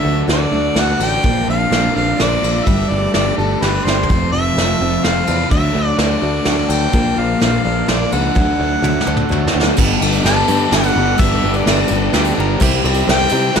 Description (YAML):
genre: folk rock and heartland rock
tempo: 127 BPM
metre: 3/4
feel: straight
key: unclear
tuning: A4 = 440 Hz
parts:
  - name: warm harmonica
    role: melody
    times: 0.0-13.6 s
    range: A4 to A5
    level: -20 LUFS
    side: left 1 dB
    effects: none
  - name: picked steel-string acoustic guitar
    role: accompaniment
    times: 0.0-13.6 s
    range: F2 to A4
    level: -24 LUFS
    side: left 5 dB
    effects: none
  - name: rich studio string section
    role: sustained chords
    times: 0.0-13.6 s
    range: B3 to C5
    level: -29 LUFS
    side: right 1 dB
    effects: none
  - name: crunchy overdriven guitar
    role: riff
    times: 0.0-13.6 s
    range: F2 to G4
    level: -20 LUFS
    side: right 1 dB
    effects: none
  - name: picked electric bass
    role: bass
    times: 0.0-13.6 s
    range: F1 to C3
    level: -20 LUFS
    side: equal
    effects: none
  - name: soft brush drum kit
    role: drums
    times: 0.3-13.6 s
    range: crash cymbal, kick drum, ride cymbal, snare drum, toms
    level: -18 LUFS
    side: equal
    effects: none
  - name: bowl-back mandolin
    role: second line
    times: 8.9-9.6, 12.2-12.8 s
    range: G4 to F#5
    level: -27 LUFS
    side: right 2 dB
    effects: tape echo
  - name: tambourine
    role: percussion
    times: 9.8-13.4 s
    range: none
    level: -32 LUFS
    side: right 12 dB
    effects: none
room: light reverb, studio reverb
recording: none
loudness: -13 LUFS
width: side -7 dB against mid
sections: 0.0-9.8 A section; 9.8-13.6 B section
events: drum fill 3.8, 8.8-9.8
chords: 0.0 D; 1.2 Bb; 2.7 Gsus2; 4.1 F; 5.5 D; 6.9 Bb; 8.4 D; 9.8 Gadd9; 12.6 C